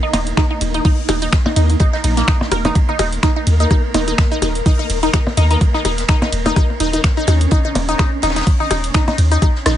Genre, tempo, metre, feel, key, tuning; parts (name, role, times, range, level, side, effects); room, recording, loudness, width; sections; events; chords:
minimal techno; 126 BPM; 4/4; swing 56% on 16ths; A4 = 440 Hz
resonant blip pluck; riff; 0.0-9.7 s; Bb3 to Bb4; -20 LUFS; equal; phaser, cassette tape, sidechain pumping, digital delay
flickering grainy texture; texture; 0.0-9.8 s; Bb3 to Bb4; -25 LUFS; equal; built-in reverb, sidechain pumping
punchy sub bass; bass; 0.1-9.8 s; Eb1 to Eb2; -17 LUFS; equal; sidechain pumping
punchy analog drum machine; drums; 0.1-9.8 s; finger snaps, hi-hat, ride cymbal, rim click; -23 LUFS; equal
warm soul drum kit; drums; 0.1-9.8 s; hi-hat, ride cymbal, snare drum; -30 LUFS; right 2 dB; high-pass filter on cymbals, high-pass filter on hats, high-pass filter on snare, high-pass filter on room
percussion blips; percussion; 0.1-9.5 s; -22 LUFS; left 3 dB; ping-pong delay
electronic kick drum; drums; 0.4-9.5 s; -15 LUFS; equal; overdrive
little or no reverb; nothing above 10.4 kHz; -13 LUFS; side -11 dB against mid
0.0-9.8 A section
0.0 Eb7(no3)